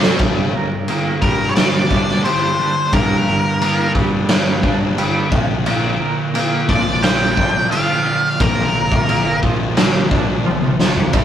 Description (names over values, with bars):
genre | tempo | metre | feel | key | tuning
quiet-loud alternative rock | 88 BPM | 4/4 | straight | G minor | A4 = 440 Hz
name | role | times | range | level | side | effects
biting overdriven guitar | riff | 0.0-0.2, 11.1-11.2 s | G2 to D4 | -28 LUFS | right 7 dB | none
thick fuzz guitar | riff | 0.0-11.2 s | G2 to D4 | -23 LUFS | equal | distortion
growling picked electric bass | bass | 0.0-11.2 s | G1 to G3 | -24 LUFS | right 1 dB | overdrive
raw garage drum kit | drums | 0.0-11.2 s | crash cymbal, kick drum, snare drum, toms | -17 LUFS | equal | none
twelve-string electric guitar | arpeggios | 0.2-11.2 s | G2 to Bb4 | -24 LUFS | right 4 dB | tremolo
octave-fuzz lead guitar | melody | 1.2-9.4 s | Bb4 to G5 | -19 LUFS | left 1 dB | distortion
room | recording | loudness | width
light reverb | rough rehearsal-room recording | -14 LUFS | side -10 dB against mid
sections
0.2-11.2 A section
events
drum fill 0.0, 10.5-11.1; lead electric guitar solo 0.2-11.2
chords
0.2 Gm; 5.3 Bb